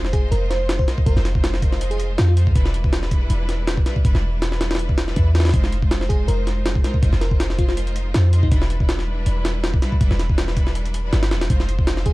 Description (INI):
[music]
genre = drum and bass, jungle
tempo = 161 BPM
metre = 4/4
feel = swing 54% on 16ths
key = unclear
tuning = A4 = 440 Hz
[part]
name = clear studio string section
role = sustained chords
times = 0.0-12.1 s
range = G3 to C5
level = -30 LUFS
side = equal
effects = none
[part]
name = warm 808-style bass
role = bass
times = 0.0-12.1 s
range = E1 to F2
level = -20 LUFS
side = equal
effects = none
[part]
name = jungle sampler-style drum kit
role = drums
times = 0.0-12.1 s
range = hi-hat, kick drum, snare drum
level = -20 LUFS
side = equal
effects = studio reverb
[part]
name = bell-like FM electric piano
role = melody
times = 0.1-2.3, 6.1-8.6, 12.1 s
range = Eb4 to C5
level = -30 LUFS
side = equal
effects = chorus, dub echo
[sound]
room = little or no reverb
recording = dark, warm production, vinyl crackle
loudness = -17 LUFS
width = side -20 dB against mid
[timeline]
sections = 0.0-12.1 A section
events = none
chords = 0.0 Fm7; 2.6 Em7; 5.5 Fm7; 8.5 Em7; 11.5 Fm7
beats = 0.32 0.69 | 1.06 1.44 1.81 2.18 | 2.56 2.93 3.30 3.67 | 4.05 4.42 4.79 5.16 | 5.54 5.91 6.28 6.66 | 7.03 7.40 7.77 8.14 | 8.52 8.89 9.26 9.64 | 10.01 10.38 10.75 11.13 | 11.50 11.87